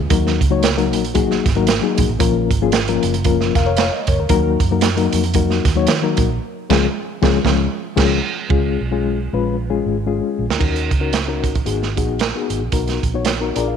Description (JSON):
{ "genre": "uptempo 1960s-style soul", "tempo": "114 BPM", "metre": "4/4", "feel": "swing 58% on 8ths", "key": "Eb minor", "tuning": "A4 = 440 Hz", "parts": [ { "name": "vintage muted fingered electric bass", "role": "bass", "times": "0.0-13.8 s", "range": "F1 to Eb3", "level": "-22 LUFS", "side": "right 1 dB", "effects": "none" }, { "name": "mellow reed electric piano", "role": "accompaniment", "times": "0.1-13.8 s", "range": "F3 to F5", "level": "-19 LUFS", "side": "left 7 dB", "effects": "fast tremolo" }, { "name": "crunchy breakbeat drum kit", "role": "drums", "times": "0.1-13.7 s", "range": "crash cymbal, hi-hat, kick drum, snare drum", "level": "-19 LUFS", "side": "right 5 dB", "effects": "none" } ], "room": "moderate echo chamber reverb, RT60 1.6 s, small room reverb", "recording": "1960s-style stereo", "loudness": "-15 LUFS", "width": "side -7 dB against mid", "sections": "0.0-8.5 A section; 8.5-10.6 B section; 10.6-13.8 C section", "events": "reed electric piano fill 3.3-4.3, 13.3-13.8; band accent 6.4-8.5; drum fill 8.5-10.6", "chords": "0.1 Ebm; 2.2 Bbm; 4.3 Ebm; 6.4 Db; 10.6 Ebm7; 11.7 Abm7; 12.7 Bmaj7" }